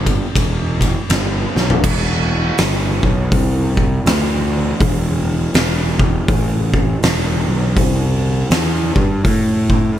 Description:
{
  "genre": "stoner and doom metal",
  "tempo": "81 BPM",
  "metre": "4/4",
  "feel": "swing 61% on 8ths",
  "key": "unclear",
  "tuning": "A4 = 439 Hz",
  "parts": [
    { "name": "fuzz picked electric bass", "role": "bass", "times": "0.0-9.9 s", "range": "E1 to A2", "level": "-17 LUFS", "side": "equal", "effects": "overdrive" },
    { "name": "oversized low-tuned drum kit", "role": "drums", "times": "0.1-9.8 s", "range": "crash cymbal, hi-hat, kick drum, ride cymbal, snare drum, toms", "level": "-17 LUFS", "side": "equal", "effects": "none" }
  ],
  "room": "little or no reverb",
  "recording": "none",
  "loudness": "-14 LUFS",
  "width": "side -11 dB against mid",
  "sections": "0.0-1.8 A section; 1.8-10.0 B section",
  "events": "drum fill 1.5-1.8",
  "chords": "none"
}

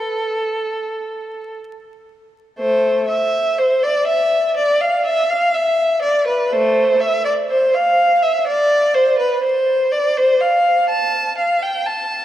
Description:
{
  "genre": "classical, baroque-style suite movement for unaccompanied violin",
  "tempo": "61 BPM",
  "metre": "4/4",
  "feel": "rubato",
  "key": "A minor",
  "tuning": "A4 = 439 Hz",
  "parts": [
    { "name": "rich violin", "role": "solo", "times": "0.0-12.2 s", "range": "A3 to A5", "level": "-15 LUFS", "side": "equal", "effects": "none" }
  ],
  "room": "wet church reverb, RT60 3.4 s",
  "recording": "dark, warm production, vinyl crackle",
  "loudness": "-14 LUFS",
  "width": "side -12 dB against mid",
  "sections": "0.0-2.6 A section; 2.6-12.2 A section",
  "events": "none",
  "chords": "none"
}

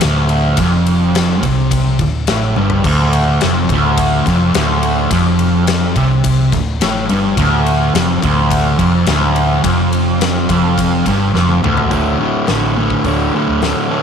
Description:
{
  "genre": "blues rock power trio and southern rock",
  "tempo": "106 BPM",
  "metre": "4/4",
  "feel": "straight",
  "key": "unclear",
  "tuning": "A4 = 440 Hz",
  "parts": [
    { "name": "fuzz guitar", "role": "riff", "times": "0.0-14.0 s", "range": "D2 to D3", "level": "-13 LUFS", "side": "equal", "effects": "distortion" },
    { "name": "vintage muted fingered electric bass", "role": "bass", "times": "0.0-13.7 s", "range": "D1 to D2", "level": "-19 LUFS", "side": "equal", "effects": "none" },
    { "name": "huge arena drum kit", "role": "drums", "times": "0.0-13.8 s", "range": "crash cymbal, hi-hat, kick drum, ride cymbal, snare drum, toms", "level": "-20 LUFS", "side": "left 4 dB", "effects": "none" }
  ],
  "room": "light reverb, studio ambience",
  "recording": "1960s-style stereo",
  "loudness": "-12 LUFS",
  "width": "side -7 dB against mid",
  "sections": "0.0-11.9 A section; 11.9-14.0 B section",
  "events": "drum fill 2.6, 11.3-11.9",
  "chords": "0.0 D5"
}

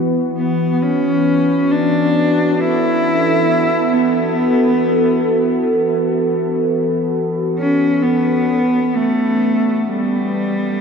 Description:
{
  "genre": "ambient",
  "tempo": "free time",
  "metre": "none",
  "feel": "none",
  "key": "E dorian",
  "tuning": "A4 = 444 Hz",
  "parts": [
    { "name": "warbly tape-like pad", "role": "sustained chords", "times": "0.0-10.8 s", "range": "E3 to B4", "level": "-17 LUFS", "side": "right 1 dB", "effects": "chorus, built-in reverb, phaser" },
    { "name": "rich cello", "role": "melody", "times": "0.4-10.8 s", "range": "G3 to E4", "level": "-17 LUFS", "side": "left 1 dB", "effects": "ping-pong delay" }
  ],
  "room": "wet huge ambient reverb, RT60 9.2 s",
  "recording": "cassette tape",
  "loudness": "-14 LUFS",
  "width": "side -6 dB against mid",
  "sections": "0.0-10.8 A section",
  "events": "none",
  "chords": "0.0 E5; 8.0 G"
}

